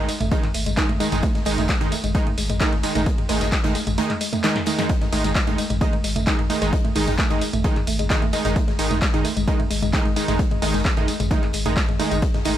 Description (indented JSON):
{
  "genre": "driving peak-time techno",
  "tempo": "131 BPM",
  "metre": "4/4",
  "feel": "straight",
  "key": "unclear",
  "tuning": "A4 = 440 Hz",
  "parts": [
    { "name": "woody wave-folded pluck", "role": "riff", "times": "0.0-12.5 s", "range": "G#3 to A3", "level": "-27 LUFS", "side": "left 1 dB", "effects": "chorus, sidechain pumping, digital delay" },
    { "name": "supersaw stab", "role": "stabs", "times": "0.0-12.6 s", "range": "D#3 to D#4", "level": "-25 LUFS", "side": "right 2 dB", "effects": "sidechain pumping, digital delay" },
    { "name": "saturated sub bass", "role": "bass", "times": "0.0-12.6 s", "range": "G#1", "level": "-26 LUFS", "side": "equal", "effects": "tube saturation, sidechain pumping, low-pass filter" },
    { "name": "oversized low-tuned drum kit", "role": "drums", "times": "0.1-12.6 s", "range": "hi-hat, snare drum", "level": "-37 LUFS", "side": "left 2 dB", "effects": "none" },
    { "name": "punchy analog drum machine", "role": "drums", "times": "0.1-12.5 s", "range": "handclaps, hi-hat, ride cymbal, snare drum, tambourine, toms", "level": "-26 LUFS", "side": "equal", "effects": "sidechain pumping on hats, sidechain pumping on cymbals, sidechain pumping on perc, sidechain pumping on toms" },
    { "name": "electronic kick drum", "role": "drums", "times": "0.3-12.3 s", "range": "none", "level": "-22 LUFS", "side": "equal", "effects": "none" }
  ],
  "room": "little or no reverb",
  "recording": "none",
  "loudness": "-19 LUFS",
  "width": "side -11 dB against mid",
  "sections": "0.0-12.6 A section",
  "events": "drum fill 4.4-4.9",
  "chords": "0.0 G#5"
}